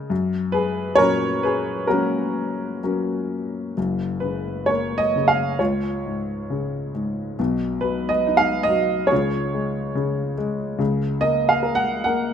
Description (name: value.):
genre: classical, lyrical solo piano.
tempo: 62-72 BPM.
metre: 4/4.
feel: rubato.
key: F# major.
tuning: A4 = 442 Hz.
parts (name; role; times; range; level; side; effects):
dark baby grand piano; solo; 0.0-12.3 s; F#1 to F#5; -20 LUFS; equal; none.
room: light reverb.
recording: close, detailed microphones.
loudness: -20 LUFS.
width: side -8 dB against mid.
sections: 0.0-3.8 A section; 3.8-12.3 B section.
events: none.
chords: 0.1 F#; 5.6 C#; 7.4 B; 9.1 C#; 10.8 C#69.